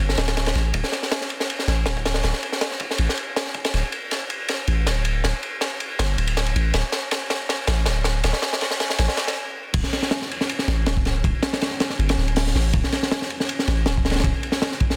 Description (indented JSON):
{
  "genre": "drum and bass, jungle",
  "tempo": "160 BPM",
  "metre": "4/4",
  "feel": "straight",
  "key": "unclear",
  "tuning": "A4 = 440 Hz",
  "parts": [
    { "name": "long sustained 808-style bass", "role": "bass", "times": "0.0-14.3 s", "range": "D1 to A1", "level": "-24 LUFS", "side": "equal", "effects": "tube saturation" },
    { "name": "crunchy breakbeat drum kit", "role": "drums", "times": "0.1-15.0 s", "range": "crash cymbal, hi-hat, kick drum, ride cymbal, snare drum", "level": "-25 LUFS", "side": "equal", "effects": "high-pass filter on kick, high-pass filter on cymbals, high-pass filter on hats, high-pass filter on snare, high-pass filter on room" }
  ],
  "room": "little or no reverb",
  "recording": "dense, heavily limited modern master",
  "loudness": "-23 LUFS",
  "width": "mono",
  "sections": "0.0-9.7 A section; 9.7-15.0 B section",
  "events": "build-up 0.0-9.7; drum fill 3.7-9.4; stop 9.4-9.7; drop 9.7-15.0",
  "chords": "none"
}